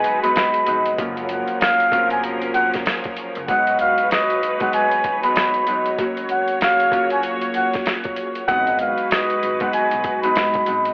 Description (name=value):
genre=hip hop, boom-bap hip-hop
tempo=96 BPM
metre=4/4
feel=swing 59% on 16ths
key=G# dorian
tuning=A4 = 444 Hz
part: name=trumpet with cup mute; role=melody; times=0.0-10.9 s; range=D#5 to B5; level=-19 LUFS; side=equal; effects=high-pass filter, low-pass filter, tape echo
part: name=Celtic harp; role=accompaniment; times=0.0-10.9 s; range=E#3 to F#4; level=-24 LUFS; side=equal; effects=cassette tape, high-pass filter, low-pass filter
part: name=bright studio string section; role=sustained chords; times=0.0-10.9 s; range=F#3 to C#5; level=-32 LUFS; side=equal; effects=none
part: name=warm studio string section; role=stabs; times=0.0-10.9 s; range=E#3 to C#5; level=-26 LUFS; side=equal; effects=high-pass filter, low-pass filter, tape echo
part: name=boom bap sampler-style drum kit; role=drums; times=0.0-10.9 s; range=hi-hat, kick drum, snare drum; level=-24 LUFS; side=equal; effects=vintage 12-bit sampler grit
part: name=upright bass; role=bass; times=0.7-3.5, 8.5-10.9 s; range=E#1 to G#2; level=-34 LUFS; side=equal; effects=none
room=light reverb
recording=vinyl crackle, telephone sound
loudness=-17 LUFS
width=side -31 dB against mid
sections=0.0-10.9 A section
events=break 0.0-1.0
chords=0.0 G#m7; 1.0 F#maj7; 3.5 G#m7; 6.0 F#maj7; 8.5 G#m7